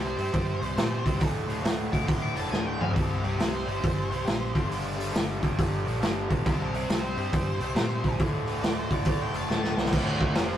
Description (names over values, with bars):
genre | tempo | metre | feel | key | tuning
blues rock power trio and southern rock | 138 BPM | 4/4 | swing 64% on 8ths | D minor | A4 = 435 Hz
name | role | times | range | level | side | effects
octave-fuzz lead guitar | melody | 0.0-9.8 s | G4 to D6 | -36 LUFS | equal | distortion
raw garage guitar | riff | 0.0-10.6 s | D2 to C4 | -31 LUFS | equal | overdrive, spring reverb
vintage muted fingered electric bass | bass | 0.0-10.6 s | D1 to Bb2 | -34 LUFS | equal | none
raw garage drum kit | drums | 0.2-10.5 s | crash cymbal, hi-hat, kick drum, snare drum, toms | -27 LUFS | equal | none
overdriven tonewheel organ | sustained chords | 9.9-10.6 s | C4 to C5 | -38 LUFS | right 2 dB | none
room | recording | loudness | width
light reverb | rough rehearsal-room recording, tube saturation | -25 LUFS | side -11 dB against mid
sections
0.0-9.9 A section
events
drum fill 2.5-3.0, 9.5-9.9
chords
0.0 C5; 1.2 D5; 3.0 C5; 4.5 Gm; 6.5 C5; 8.2 D5; 9.9 Dm